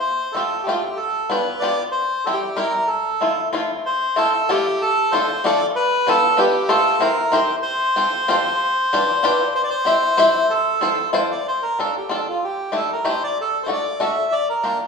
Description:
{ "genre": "musette waltz", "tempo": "189 BPM", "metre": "3/4", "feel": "straight", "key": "F major, D minor from 11.5 s", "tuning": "A4 = 440 Hz", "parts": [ { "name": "bandoneon", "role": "melody", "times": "0.0-14.8 s", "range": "F4 to E5", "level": "-19 LUFS", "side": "equal", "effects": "none" }, { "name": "bluegrass banjo", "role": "accompaniment", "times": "0.3-14.8 s", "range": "G3 to E5", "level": "-21 LUFS", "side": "left 2 dB", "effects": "none" } ], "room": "wet large studio reverb, RT60 1.3 s", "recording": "band playing live in one room", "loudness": "-17 LUFS", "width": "side -5 dB against mid", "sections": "0.0-3.9 A section; 3.9-11.5 A section; 11.5-14.9 B section", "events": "none", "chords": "0.0 Fadd9; 1.0 G7; 1.9 C; 2.9 Fmaj7; 4.8 Dm7; 5.8 G7; 6.7 F; 7.0 C7; 7.7 Fadd9; 8.6 G7; 9.6 C; 10.5 Fmaj7; 11.5 Dm7; 12.4 A7sus4; 13.4 D/A; 14.3 Gm7" }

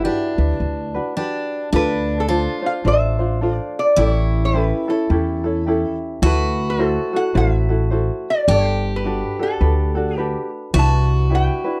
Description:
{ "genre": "Hawaiian", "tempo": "106 BPM", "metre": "4/4", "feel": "swing 61% on 8ths", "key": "unclear", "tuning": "A4 = 440 Hz", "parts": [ { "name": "lap resonator guitar", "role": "melody", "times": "0.0-11.8 s", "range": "G4 to A5", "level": "-25 LUFS", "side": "equal", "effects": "none" }, { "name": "picked steel-string acoustic guitar", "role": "second line", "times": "0.0-11.8 s", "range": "D4 to G4", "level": "-27 LUFS", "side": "equal", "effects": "none" }, { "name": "tenor ukulele", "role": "accompaniment", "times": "0.0-11.8 s", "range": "C#4 to C5", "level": "-26 LUFS", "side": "equal", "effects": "none" }, { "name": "upright bass", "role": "bass", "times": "0.0-11.5 s", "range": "G1 to E2", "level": "-22 LUFS", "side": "equal", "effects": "none" } ], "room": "little or no reverb", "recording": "dry, close 1970s-style studio recording", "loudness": "-19 LUFS", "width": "mono", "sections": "0.0-1.7 A section; 1.7-11.8 B section", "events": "none", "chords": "0.0 Gmaj7; 1.7 Dm7; 4.0 A7; 6.2 D9; 8.5 Gmaj9; 10.7 Cmaj9" }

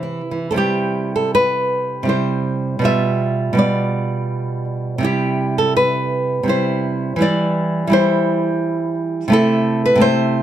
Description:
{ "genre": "classical", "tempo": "70-88 BPM", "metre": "3/4", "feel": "rubato", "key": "C major", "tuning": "A4 = 442 Hz", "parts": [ { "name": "nylon-string guitar", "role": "accompaniment", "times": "0.0-10.4 s", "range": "B2 to E5", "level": "-16 LUFS", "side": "right 1 dB", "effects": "none" } ], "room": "light reverb", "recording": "close, detailed microphones", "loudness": "-16 LUFS", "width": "side -11 dB against mid", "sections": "0.6-10.4 A section", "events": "none", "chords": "0.0 C; 2.9 G7/B; 5.0 C; 7.2 C/E; 9.3 Am/C" }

